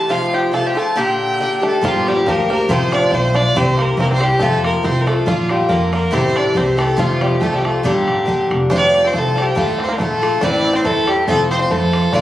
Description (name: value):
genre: celtic folk, Celtic polka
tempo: 140 BPM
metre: 2/4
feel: swing 54% on 8ths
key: unclear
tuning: A4 = 436 Hz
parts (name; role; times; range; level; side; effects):
- rich fiddle; melody; 0.0-12.2 s; F4 to A5; -18 LUFS; equal; none
- bluegrass banjo; second line; 0.0-12.2 s; G3 to A4; -24 LUFS; right 2 dB; none
- Irish bouzouki; accompaniment; 0.0-12.2 s; G2 to G4; -18 LUFS; left 1 dB; none
- upright bass; bass; 1.8-12.2 s; F1 to F2; -21 LUFS; equal; none
- bodhran; percussion; 1.8-12.2 s; none; -26 LUFS; equal; none
room: light reverb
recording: recorded on a phone in the room, club reverb, compression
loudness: -14 LUFS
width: side -13 dB against mid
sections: 0.0-1.8 A section; 1.8-8.7 A section; 8.7-12.2 B section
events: none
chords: 0.1 F; 1.0 Gm; 1.8 Gm7; 2.7 F/A; 3.5 C7; 4.4 F; 5.3 Bb; 6.1 Am7; 7.0 F; 7.8 Gm; 8.7 Fsus2; 9.6 Dm; 10.4 Am; 11.3 F